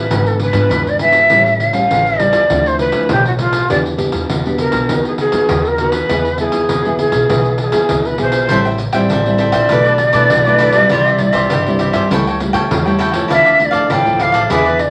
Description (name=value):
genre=samba and choro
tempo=100 BPM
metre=4/4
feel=straight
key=unclear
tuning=A4 = 440 Hz
part: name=breathy shakuhachi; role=melody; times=0.0-14.9 s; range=F4 to G5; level=-16 LUFS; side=equal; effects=none
part: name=nylon-string guitar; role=accompaniment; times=0.0-14.9 s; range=G2 to G#4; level=-22 LUFS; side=equal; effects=none
part: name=upright bass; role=bass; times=0.0-14.9 s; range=G#1 to E3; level=-24 LUFS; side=equal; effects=none
part: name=pandeiro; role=percussion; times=0.1-14.9 s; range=none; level=-22 LUFS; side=equal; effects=none
part: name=cavaquinho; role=accompaniment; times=8.5-14.8 s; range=E4 to G5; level=-20 LUFS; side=equal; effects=none
room=wet club reverb, RT60 0.7 s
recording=vinyl crackle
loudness=-14 LUFS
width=mono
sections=0.0-14.9 A section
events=none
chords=0.1 E7/G#; 1.3 A7; 2.5 Dmadd9; 3.7 Em7; 4.9 B/D#; 6.1 E; 8.5 Am7; 9.7 E7sus4/B; 10.9 C; 12.1 A7/C#; 13.3 Dmadd9